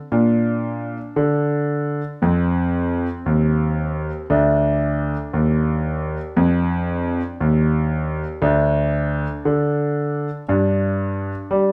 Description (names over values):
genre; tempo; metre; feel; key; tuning
classical, baroque-style suite movement for grand piano; 58 BPM; 4/4; rubato; unclear; A4 = 439 Hz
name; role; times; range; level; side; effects
clear concert grand piano; solo; 0.0-11.7 s; D2 to D4; -20 LUFS; equal; none
room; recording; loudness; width
wet stone room reverb, RT60 1.0 s; heard from further back in the room; -20 LUFS; mono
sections
0.0-11.7 A section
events
none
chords
0.1 Bb; 2.2 F5; 4.3 Dm; 8.4 N.C.; 10.5 G5